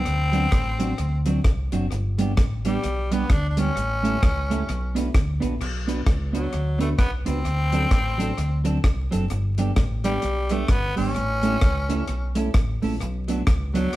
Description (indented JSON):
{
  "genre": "ska",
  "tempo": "130 BPM",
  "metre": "4/4",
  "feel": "swing 60% on 8ths",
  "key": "B minor",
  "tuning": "A4 = 440 Hz",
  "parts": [
    { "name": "growling tenor saxophone", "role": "melody", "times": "0.0-14.0 s", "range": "F#3 to D4", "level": "-27 LUFS", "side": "left 2 dB", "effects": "none" },
    { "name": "deep dub fingered electric bass", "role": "bass", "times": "0.0-13.9 s", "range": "F#1 to D2", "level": "-25 LUFS", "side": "equal", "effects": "none" },
    { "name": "deep reggae drum kit", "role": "drums", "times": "0.1-14.0 s", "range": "crash cymbal, hi-hat, kick drum, rim click", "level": "-24 LUFS", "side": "equal", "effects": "tape echo" },
    { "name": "clean electric guitar", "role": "accompaniment", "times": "0.3-13.9 s", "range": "F#3 to B4", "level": "-27 LUFS", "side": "right 3 dB", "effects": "tape echo" }
  ],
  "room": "moderate studio reverb, RT60 0.9 s",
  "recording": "band playing live in one room, vinyl crackle",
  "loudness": "-20 LUFS",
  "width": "side -16 dB against mid",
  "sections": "0.0-5.6 A section; 5.6-14.0 A section",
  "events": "none",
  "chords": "0.1 D7; 1.9 G; 3.8 A; 4.7 Bm; 7.5 D7; 9.3 G; 11.2 A; 13.0 Bm"
}